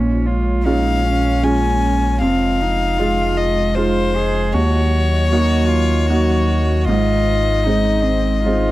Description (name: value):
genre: neoclassical piano and strings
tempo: 77 BPM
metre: 3/4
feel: rubato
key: Ab mixolydian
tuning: A4 = 444 Hz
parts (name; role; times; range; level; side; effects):
- warm cello; second line; 0.0-8.7 s; C4 to Ab4; -23 LUFS; right 4 dB; none
- clear upright piano; accompaniment; 0.0-8.7 s; Eb2 to Gb4; -20 LUFS; right 2 dB; none
- hollow soft pad; sustained chords; 0.0-8.7 s; Gb3 to Eb5; -27 LUFS; right 1 dB; chorus
- sub bass with octave; bass; 0.0-8.7 s; F1 to Eb2; -19 LUFS; equal; none
- rich violin; melody; 0.6-8.7 s; C5 to Ab5; -21 LUFS; left 4 dB; none
room: little or no reverb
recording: dry, close 1970s-style studio recording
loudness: -14 LUFS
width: side -16 dB against mid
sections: 0.0-8.7 A section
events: none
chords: 0.0 Bbm7; 2.2 Fm7; 4.5 Ebm7; 6.9 Ab